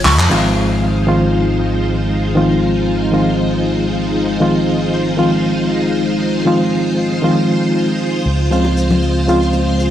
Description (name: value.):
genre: nu-disco, nu disco.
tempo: 117 BPM.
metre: 4/4.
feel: swing 54% on 16ths.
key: Ab major.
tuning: A4 = 440 Hz.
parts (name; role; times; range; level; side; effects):
reed electric piano; accompaniment; 0.0-9.9 s; Db3 to F4; -15 LUFS; equal; fast tremolo, tape echo.
string machine, full ensemble; sustained chords; 0.0-9.9 s; Ab3 to C5; -19 LUFS; left 1 dB; ensemble chorus.
congas, maracas and bongos; percussion; 0.0-0.3, 8.5-9.9 s; none; -22 LUFS; left 3 dB; none.
fingered electric bass with an envelope filter; bass; 0.1-9.9 s; Ab1 to F2; -20 LUFS; equal; none.
room: light reverb.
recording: dry, gritty hardware recording, transformer saturation.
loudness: -13 LUFS.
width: side -11 dB against mid.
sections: 0.3-9.9 A section.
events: none.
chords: 0.3 Ab6; 8.3 Dbmaj7.